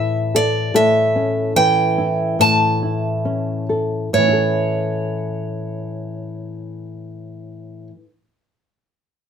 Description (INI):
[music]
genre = acoustic folk duo or small band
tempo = 66-76 BPM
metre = 4/4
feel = straight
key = A mixolydian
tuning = A4 = 439 Hz
[part]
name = picked steel-string acoustic guitar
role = melody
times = 0.0-7.9 s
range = C#5 to A5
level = -18 LUFS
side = right 2 dB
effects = none
[part]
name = nylon-string guitar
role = accompaniment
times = 0.0-8.1 s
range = A2 to A4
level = -20 LUFS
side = left 2 dB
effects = none
[sound]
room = light reverb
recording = minimal, uncompressed stereo recording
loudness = -16 LUFS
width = side -7 dB against mid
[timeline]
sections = 0.0-4.1 A section; 4.1-7.8 B section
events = slowing down 0.0-4.1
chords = 0.0 A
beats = | 0.74 1.55 2.39 3.25 | 4.13 5.04 5.94 6.85